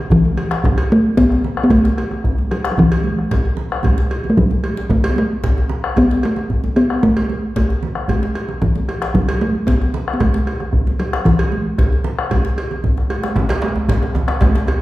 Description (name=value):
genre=west african traditional, West African drum ensemble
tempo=113 BPM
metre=4/4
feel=straight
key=unclear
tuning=A4 = 441 Hz
part: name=talking drum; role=melody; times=0.0-13.1 s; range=D3 to B3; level=-16 LUFS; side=equal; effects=none
part: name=bombo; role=percussion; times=0.1-14.7 s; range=none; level=-20 LUFS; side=equal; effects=none
part: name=djembe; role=percussion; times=0.1-14.7 s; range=none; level=-22 LUFS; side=left 1 dB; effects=none
part: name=congas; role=percussion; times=0.2-14.5 s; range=none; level=-26 LUFS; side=right 3 dB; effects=none
part: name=cowbell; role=percussion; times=0.4-14.8 s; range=none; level=-26 LUFS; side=right 2 dB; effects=none
part: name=djembe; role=percussion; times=13.4-14.8 s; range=none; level=-21 LUFS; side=right 1 dB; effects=none
room=wet recital hall reverb, RT60 1.4 s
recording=heard from further back in the room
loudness=-14 LUFS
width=side -17 dB against mid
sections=0.0-13.4 A section; 13.4-14.8 B section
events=drum fill 12.8-13.4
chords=none